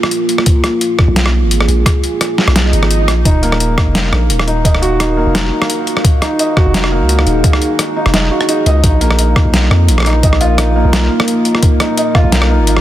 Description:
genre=half-time drum and bass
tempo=172 BPM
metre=4/4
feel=swing 54% on 16ths, half-time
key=unclear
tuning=A4 = 439 Hz
part: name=deep dark ambient pad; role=sustained chords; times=0.0-12.8 s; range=Bb3 to F5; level=-18 LUFS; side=right 1 dB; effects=chorus, built-in reverb, sidechain pumping
part: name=boom bap sampler-style drum kit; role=drums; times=0.0-12.8 s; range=hi-hat, rim click, snare drum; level=-16 LUFS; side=left 1 dB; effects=soft clipping on snare
part: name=electronic kick drum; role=drums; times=0.5-12.2 s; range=none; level=-12 LUFS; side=equal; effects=none
part: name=long sustained 808-style bass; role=bass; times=1.1-12.8 s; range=Eb1 to F2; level=-13 LUFS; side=equal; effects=none
part: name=swell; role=sound effects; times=2.6-3.3 s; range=none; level=-24 LUFS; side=right 3 dB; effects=none
part: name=felt-muted upright piano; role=arpeggios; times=3.3-12.8 s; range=Bb3 to Eb5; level=-16 LUFS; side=right 1 dB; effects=dub echo
room=light reverb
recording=dense, heavily limited modern master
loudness=-10 LUFS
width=side -13 dB against mid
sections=0.0-12.8 A section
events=swell 2.6-3.3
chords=0.0 Bb5; 3.3 Ebm; 8.8 Bb5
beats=0.11 | 0.46 0.81 1.16 1.51 | 1.86 2.21 2.56 2.90 | 3.25 3.60 3.95 4.30 | 4.65 5.00 5.35 5.70 | 6.04 6.39 6.74 7.09 | 7.44 7.79 8.14 8.49 | 8.84 9.18 9.53 9.88 | 10.23 10.58 10.93 11.28 | 11.63 11.97 12.32 12.67

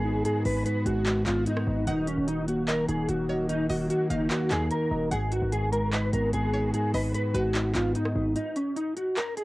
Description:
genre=hip hop, trap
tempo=148 BPM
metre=4/4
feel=half-time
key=unclear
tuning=A4 = 445 Hz
part: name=mellow electric guitar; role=melody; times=0.0-9.4 s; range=Db4 to Cb5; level=-29 LUFS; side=equal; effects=ensemble chorus, low-pass filter, tape echo
part: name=mellow tine electric piano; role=accompaniment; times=0.0-8.4 s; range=Ab2 to Eb5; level=-28 LUFS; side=equal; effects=low-pass filter
part: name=sweeping resonant pad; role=sustained chords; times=0.0-8.3 s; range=Eb3 to Gb4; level=-42 LUFS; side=right 1 dB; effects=chorus
part: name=hard-hitting 808-style bass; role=bass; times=0.0-8.3 s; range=Eb1 to Eb2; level=-34 LUFS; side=equal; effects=none
part: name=trap drum kit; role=drums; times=0.2-9.4 s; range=handclaps, hi-hat, rim click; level=-35 LUFS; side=equal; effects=overdrive, cassette tape
part: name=string-like resonator pluck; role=second line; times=1.9-7.5 s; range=Cb5 to Gb5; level=-38 LUFS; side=right 1 dB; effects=chorus, tape echo
room=light reverb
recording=home recording on cassette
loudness=-24 LUFS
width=side -19 dB against mid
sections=0.0-8.4 A section; 8.4-9.4 B section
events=break 8.4-9.4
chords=0.0 Abm7; 1.9 Ebm; 5.1 Abm7; 8.4 N.C.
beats=| 0.25 0.66 1.06 1.47 | 1.87 2.28 2.68 3.09 | 3.49 3.90 4.30 4.71 | 5.12 5.52 5.93 6.33 | 6.74 7.14 7.55 7.95 | 8.36 8.76 9.17

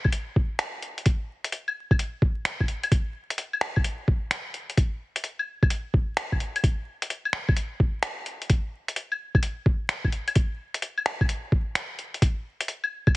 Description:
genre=future garage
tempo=129 BPM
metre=4/4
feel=swing 66% on 16ths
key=none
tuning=none
part: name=electronic kick drum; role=drums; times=0.0-13.1 s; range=none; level=-22 LUFS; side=equal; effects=none
part: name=lo-fi sampler-style drum kit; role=drums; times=0.0-13.2 s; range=claves, finger snaps, hi-hat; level=-28 LUFS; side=left 1 dB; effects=none
room=little or no reverb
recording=heavily compressed radio sound, multiband compression, vinyl crackle, nothing above 10.3 kHz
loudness=-24 LUFS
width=side -21 dB against mid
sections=0.0-13.2 A section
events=none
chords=none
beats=0.13 0.59 | 1.06 1.52 1.99 2.46 | 2.92 3.38 3.85 4.32 | 4.78 5.25 5.71 6.18 | 6.64 7.11 7.57 8.04 | 8.50 8.97 9.43 9.90 | 10.36 10.83 11.29 11.76 | 12.22 12.69 13.15

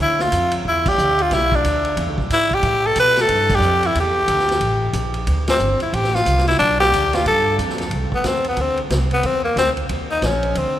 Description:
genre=jazz, small-group swing and bop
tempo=182 BPM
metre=4/4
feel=swing 62% on 8ths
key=unclear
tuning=A4 = 442 Hz
part: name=growling tenor saxophone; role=melody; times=0.0-10.8 s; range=Bb3 to B4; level=-17 LUFS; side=left 1 dB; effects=none
part: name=upright bass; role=bass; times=0.0-10.8 s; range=G1 to B2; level=-22 LUFS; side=right 1 dB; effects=none
part: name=vintage drum kit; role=drums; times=0.2-10.6 s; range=crash cymbal, hi-hat, kick drum, ride cymbal, snare drum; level=-26 LUFS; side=equal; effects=none
room=moderate cathedral reverb, RT60 4.8 s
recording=recorded in a church or concert hall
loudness=-16 LUFS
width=side -12 dB against mid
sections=0.0-7.9 A section; 7.9-10.8 B section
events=band accent 0.8, 3.5, 5.4; tenor saxophone solo 7.9-10.8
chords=0.0 Dmadd9; 1.3 Bmadd11; 2.0 E7; 2.6 Asus2; 4.0 Dsus24; 4.6 Gmadd9/A; 5.3 Dm7; 6.6 Bm; 7.3 Gsus2; 7.9 Cadd9; 9.9 Eb5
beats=0.33 0.66 0.98 | 1.31 1.64 1.97 2.30 | 2.63 2.96 3.29 3.62 | 3.95 4.28 4.61 4.94 | 5.27 5.60 5.93 6.26 | 6.59 6.92 7.25 7.58 | 7.91 8.24 8.57 8.90 | 9.23 9.56 9.89 10.22 | 10.55

